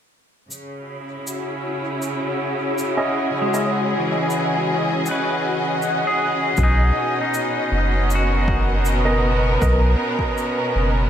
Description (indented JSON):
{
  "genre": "ambient dub",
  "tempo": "79 BPM",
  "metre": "4/4",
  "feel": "straight",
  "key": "C# dorian",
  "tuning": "A4 = 440 Hz",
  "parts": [
    { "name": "rich studio string section", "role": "sustained chords", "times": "0.5-11.1 s", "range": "B2 to D#5", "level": "-23 LUFS", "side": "right 1 dB", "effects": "none" },
    { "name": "cabasa", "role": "drums", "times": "0.5-10.5 s", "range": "none", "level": "-34 LUFS", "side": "equal", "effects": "none" },
    { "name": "bubbling stepped-filter texture", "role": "texture", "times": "1.3-11.1 s", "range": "F#4 to F#5", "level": "-27 LUFS", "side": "left 1 dB", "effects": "chorus, built-in reverb" },
    { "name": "bright upright piano", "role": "stabs", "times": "3.0-3.7, 9.1-9.8 s", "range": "B3 to D#5", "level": "-26 LUFS", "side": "right 2 dB", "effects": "low-pass filter, dub echo" },
    { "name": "pedal steel guitar", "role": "arpeggios", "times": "3.4-10.7 s", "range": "E3 to B4", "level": "-24 LUFS", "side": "left 2 dB", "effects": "low-pass filter, dub echo" },
    { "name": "warm sub bass", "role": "bass", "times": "6.6-11.1 s", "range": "F#1 to B1", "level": "-18 LUFS", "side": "equal", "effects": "none" },
    { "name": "electronic kick drum", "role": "drums", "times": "6.6-10.3 s", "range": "none", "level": "-24 LUFS", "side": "equal", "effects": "overdrive" }
  ],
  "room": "moderate spring reverb, RT60 1.8 s, studio reverb",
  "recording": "none",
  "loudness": "-18 LUFS",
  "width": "side -9 dB against mid",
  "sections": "0.5-11.1 A section",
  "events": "none",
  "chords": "0.5 C#madd9; 6.6 Bmaj7",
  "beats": "| 0.50 1.26 2.02 2.78 | 3.54 4.30 5.06 5.82 | 6.58 7.34 8.10 8.86 | 9.62 10.38"
}